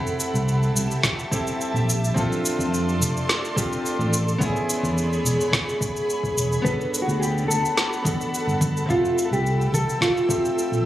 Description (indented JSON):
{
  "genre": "sunset chillout",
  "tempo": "107 BPM",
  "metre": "4/4",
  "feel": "straight",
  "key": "unclear",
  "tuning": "A4 = 444 Hz",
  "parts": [
    { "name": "clear concert grand piano", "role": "accompaniment", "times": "0.0-10.9 s", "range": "B3 to E5", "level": "-28 LUFS", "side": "equal", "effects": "auto-pan, digital delay" },
    { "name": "ethereal airy pad", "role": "sustained chords", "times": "0.0-10.8 s", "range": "G4 to E6", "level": "-29 LUFS", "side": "equal", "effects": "ensemble chorus, built-in reverb, tremolo" },
    { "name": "electronic cabasa, snare drum and congas", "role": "drums", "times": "0.1-10.8 s", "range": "none", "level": "-26 LUFS", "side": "equal", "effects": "none" },
    { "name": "fingered electric bass", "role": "bass", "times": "0.3-10.9 s", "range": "E1 to F2", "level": "-23 LUFS", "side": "equal", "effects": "none" },
    { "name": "electronic kick drum", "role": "drums", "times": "1.0-10.4 s", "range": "none", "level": "-28 LUFS", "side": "equal", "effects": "none" },
    { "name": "mellow electric guitar", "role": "melody", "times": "6.6-10.8 s", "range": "F4 to B4", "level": "-24 LUFS", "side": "equal", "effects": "harmonic tremolo, digital delay" }
  ],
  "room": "light reverb, digital ambience",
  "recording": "recorded on a phone in the room, club reverb, compression",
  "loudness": "-20 LUFS",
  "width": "side -13 dB against mid",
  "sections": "0.0-10.9 A section",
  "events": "none",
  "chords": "0.0 Fmaj9 (rootless); 1.9 Bbmaj9; 4.1 Amaj9; 6.6 Gmaj9; 8.9 Fmaj9"
}